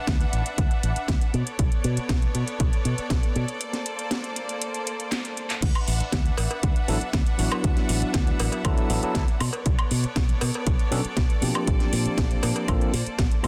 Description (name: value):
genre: nu-disco, nu disco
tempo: 119 BPM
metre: 4/4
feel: straight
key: D major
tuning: A4 = 440 Hz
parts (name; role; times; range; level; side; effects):
- clear symphonic string section; sustained chords; 0.0-13.5 s; Bb3 to F#5; -35 LUFS; equal; sidechain pumping
- fingered electric bass with an envelope filter; bass; 0.1-13.5 s; A1 to B2; -29 LUFS; equal; none
- electronic kick drum; drums; 0.1-13.3 s; none; -26 LUFS; equal; none
- house drum kit; drums; 0.1-13.5 s; crash cymbal, handclaps, hi-hat, snare drum, woodblock; -33 LUFS; equal; none
- cowbell; percussion; 6.4-12.7 s; none; -35 LUFS; equal; none
- overdriven tine electric piano; accompaniment; 6.9-13.5 s; F3 to A4; -31 LUFS; equal; sidechain pumping, slapback echo
room: little or no reverb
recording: dense, heavily limited modern master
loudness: -25 LUFS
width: mono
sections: 0.0-13.5 A section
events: break 3.6-5.6; drum fill 5.1-5.6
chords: 0.0 D69; 1.3 Bm9; 3.6 Bbmaj9; 5.6 D69; 9.4 Bm9; 11.7 Bbmaj9